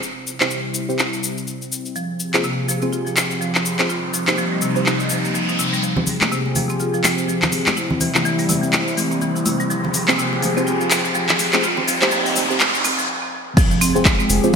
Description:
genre	afro house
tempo	124 BPM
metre	4/4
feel	swing 58% on 16ths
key	F minor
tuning	A4 = 440 Hz
part	warm analog pad	sustained chords	0.0-14.6 s	C3 to Ab4	-26 LUFS	left 1 dB	chorus, sidechain pumping
part	cabasa	percussion	0.0-14.6 s	none	-27 LUFS	left 5 dB	none
part	impact, riser and noise sweep	sound effects	3.1-14.6 s	none	-26 LUFS	equal	none
part	deep mellow chord stab	stabs	0.4-14.6 s	C4 to C5	-25 LUFS	right 1 dB	chorus, phaser, sidechain pumping, digital delay
part	afro-pop drum kit	drums	0.4-14.4 s	crash cymbal, handclaps, hi-hat	-20 LUFS	equal	none
part	marimba with hard mallets	arpeggios	2.0-14.3 s	C3 to F4	-23 LUFS	equal	sidechain pumping, low-pass filter, digital delay
part	congas	percussion	6.0-13.0 s	none	-27 LUFS	right 1 dB	none
part	electronic kick drum	drums	13.6-14.2 s	none	-15 LUFS	equal	overdrive
part	round analog bass	bass	14.3-14.4 s	F1	-21 LUFS	equal	sidechain pumping
room	moderate lush hall reverb, RT60 1.8 s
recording	bright 1980s-style digital production, high-pass filter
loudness	-17 LUFS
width	side -6 dB against mid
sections	0.0-5.8 A section; 5.8-13.6 B section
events	filter sweep on analog synth pad 0.0-5.8; riser 3.1-5.8, 5.8-13.1; build-up 5.8-13.6; filter sweep on marimba 5.8-13.6; filter sweep on synth stab 5.8-13.6; noise sweep 11.6-13.6; stop 13.1-13.6; impact 13.6-14.6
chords	0.0 C; 2.0 Fm; 3.9 Cm; 5.8 Fm; 7.8 C; 9.7 Fm; 11.6 Cm; 13.6 Fm

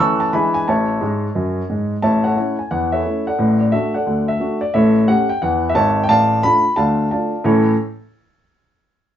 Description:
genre	jazz, stride piano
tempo	176 BPM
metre	4/4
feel	swing 64% on 8ths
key	A major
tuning	A4 = 440 Hz
part	warm grand piano	solo	0.0-7.7 s	G#1 to E6	-15 LUFS	equal	none
room	moderate studio reverb, RT60 0.5 s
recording	band playing live in one room, nothing above 7.6 kHz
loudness	-15 LUFS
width	side -10 dB against mid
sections	0.0-2.0 A section; 2.0-7.5 B section; 7.5-8.8 C section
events	grand piano fill 1.0-2.0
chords	0.0 A/E; 0.3 E7; 0.7 A; 3.4 D/A; 4.7 A7; 6.1 Dm/A; 7.5 A

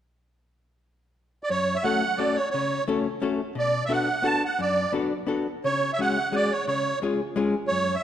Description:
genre	musette waltz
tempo	174 BPM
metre	3/4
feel	straight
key	F# minor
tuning	A4 = 440 Hz
part	musette accordion	melody	1.4-8.0 s	C#5 to A5	-24 LUFS	right 3 dB	none
part	archtop guitar, miked and amplified	accompaniment	1.5-8.0 s	F#2 to A4	-26 LUFS	left 4 dB	none
room	wet scoring stage reverb, RT60 1.4 s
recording	dark, warm production, faint mains hum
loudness	-23 LUFS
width	side -10 dB against mid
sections	0.5-1.5 A section; 1.5-8.0 B section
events	none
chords	0.5 N.C.; 1.5 F#m; 3.6 Bm7; 5.6 C#sus4; 6.7 C#

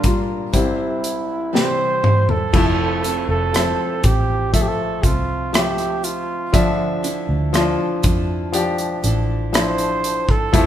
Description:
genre	pop ballad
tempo	60 BPM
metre	4/4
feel	straight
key	D minor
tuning	A4 = 439 Hz
part	warm flugelhorn	melody	0.0-10.7 s	E4 to C5	-23 LUFS	right 3 dB	none
part	clear baby grand piano	accompaniment	0.0-10.7 s	Bb1 to E5	-22 LUFS	left 3 dB	none
part	picked steel-string acoustic guitar	arpeggios	0.0-10.7 s	C3 to C5	-28 LUFS	right 6 dB	none
part	modern studio drum kit	drums	0.0-10.7 s	crash cymbal, hi-hat, kick drum, rim click, snare drum, toms	-19 LUFS	equal	none
part	vintage muted fingered electric bass	bass	2.5-10.7 s	F1 to F2	-23 LUFS	equal	none
room	moderate large studio reverb, RT60 1.2 s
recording	band playing live in one room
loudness	-17 LUFS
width	side -11 dB against mid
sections	0.0-2.5 A section; 2.5-10.7 B section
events	drum fill 1.5-2.5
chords	0.0 Gm7/Bb; 0.5 C; 2.5 Fmaj7; 6.5 Dmadd9

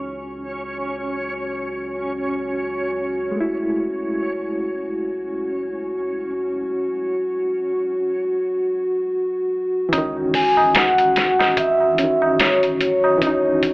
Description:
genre	trip hop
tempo	73 BPM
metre	4/4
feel	swing 57% on 16ths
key	C# minor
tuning	A4 = 440 Hz
part	reed electric piano	accompaniment	0.0-13.7 s	D#3 to E4	-26 LUFS	equal	overdrive, tremolo, tape echo
part	dark analog pad	sustained chords	0.0-13.7 s	F#4	-23 LUFS	equal	chorus
part	soft dub sub bass	bass	0.0-13.7 s	F#1 to C#2	-41 LUFS	equal	tube saturation
part	backwards swelling texture	texture	0.0-6.6 s	C#4	-29 LUFS	equal	built-in reverb
part	boom bap sampler-style drum kit	drums	9.9-13.7 s	hi-hat, kick drum, snare drum	-20 LUFS	equal	none
part	tabla	percussion	9.9-13.6 s	none	-25 LUFS	right 1 dB	none
part	vibraphone with medium mallets	melody	10.3-13.7 s	C#5 to G#5	-17 LUFS	equal	none
room	moderate plate reverb, RT60 3.2 s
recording	telephone sound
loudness	-18 LUFS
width	side -22 dB against mid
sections	0.0-9.9 A section; 9.9-13.7 B section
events	none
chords	0.0 C#madd9; 3.4 F#m7; 9.9 C#madd9

